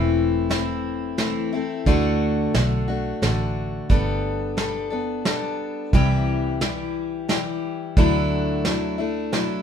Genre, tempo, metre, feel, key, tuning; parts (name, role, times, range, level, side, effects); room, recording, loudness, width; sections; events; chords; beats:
honky-tonk and classic country; 88 BPM; 3/4; straight; A4 = 442 Hz
picked steel-string acoustic guitar; accompaniment; 0.0-9.6 s; C3 to A4; -23 LUFS; left 2 dB
vintage muted fingered electric bass; bass; 0.0-9.6 s; E1 to D2; -25 LUFS; right 1 dB
soft brush drum kit; drums; 0.5-9.5 s; hi-hat, kick drum, snare drum; -22 LUFS; right 2 dB
moderate studio reverb, RT60 0.8 s; minimal, uncompressed stereo recording; -20 LUFS; side -8 dB against mid
0.0-9.6 A section
0.0 Am/E; 1.9 D; 3.9 Gadd9; 5.9 C; 8.0 Dadd9
0.50 1.18 | 1.86 2.54 3.22 | 3.90 4.58 5.26 | 5.94 6.61 7.29 | 7.97 8.65 9.33